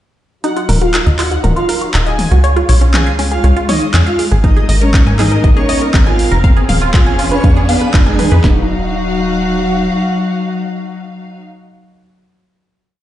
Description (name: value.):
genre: melodic techno.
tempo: 120 BPM.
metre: 4/4.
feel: straight.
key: Eb minor.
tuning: A4 = 440 Hz.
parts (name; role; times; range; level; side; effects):
expressive synth lead; melody; 0.4-11.4 s; Gb3 to Ab4; -19 LUFS; equal; lush chorus, sidechain pumping, ping-pong delay.
airy dreamy lead; second line; 0.4-11.4 s; Gb4 to Ab5; -24 LUFS; equal; chorus, cassette tape, sidechain pumping, ping-pong delay.
warm symphonic string section; sustained chords; 0.4-11.4 s; Db3 to F5; -23 LUFS; left 2 dB; sidechain pumping, low-pass filter.
tight sequenced synth; arpeggios; 0.4-8.7 s; Db4 to Ab5; -19 LUFS; right 1 dB; chorus, phaser, vintage 12-bit sampler grit, sidechain pumping, ping-pong delay.
deep house drum kit; drums; 0.4-8.4 s; handclaps, hi-hat, rim click, toms; -19 LUFS; left 1 dB; overdrive, small room reverb.
riser; sound effects; 1.7-8.4 s; none; -24 LUFS; right 2 dB; none.
tight sequencer bass; bass; 0.7-9.9 s; Eb1 to Ab2; -14 LUFS; equal; sidechain pumping.
deep house drum kit; drums; 4.4-8.6 s; handclaps, kick drum, snare drum; -11 LUFS; equal; overdrive, small room reverb.
room: light reverb.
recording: played on a big sound system in a bare room, stone room reverb, nothing above 10.7 kHz.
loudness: -10 LUFS.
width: side -13 dB against mid.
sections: 0.4-8.4 build; 8.4-12.4 final chord.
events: build-up 0.4-8.4; filter sweep on analog synth lead 0.4-8.4; filter sweep on string section 0.4-8.4; riser 1.7-8.4.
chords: 0.4 Ebmadd9; 2.4 Db; 4.4 Absus2; 6.4 Fdim; 8.4 Ebmadd9.